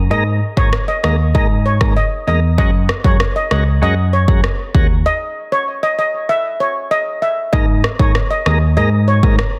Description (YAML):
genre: dancehall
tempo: 97 BPM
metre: 4/4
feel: straight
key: unclear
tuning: A4 = 439 Hz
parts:
  - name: bell-like tine electric piano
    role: bass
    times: 0.0-9.4 s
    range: C#2 to G#2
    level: -18 LUFS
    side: equal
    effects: phaser
  - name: steel pan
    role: melody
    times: 0.1-9.2 s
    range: C#5 to E5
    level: -21 LUFS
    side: equal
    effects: none
  - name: tonewheel organ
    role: accompaniment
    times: 0.1-9.4 s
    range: G#3 to A#4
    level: -26 LUFS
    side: equal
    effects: slow rotary speaker
  - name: afro-pop drum kit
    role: drums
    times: 0.6-9.5 s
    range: kick drum, rim click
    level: -18 LUFS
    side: equal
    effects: overdrive
room: light reverb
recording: dense, heavily limited modern master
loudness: -15 LUFS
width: mono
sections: 0.0-9.6 A section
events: break 5.1-7.5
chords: 0.0 G#sus2; 2.6 F#add9; 5.1 N.C.; 7.5 G#sus2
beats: | 0.11 0.73 1.34 1.96 | 2.58 3.20 3.82 4.44 | 5.06 5.67 6.29 6.91 | 7.53 8.15 8.77 9.39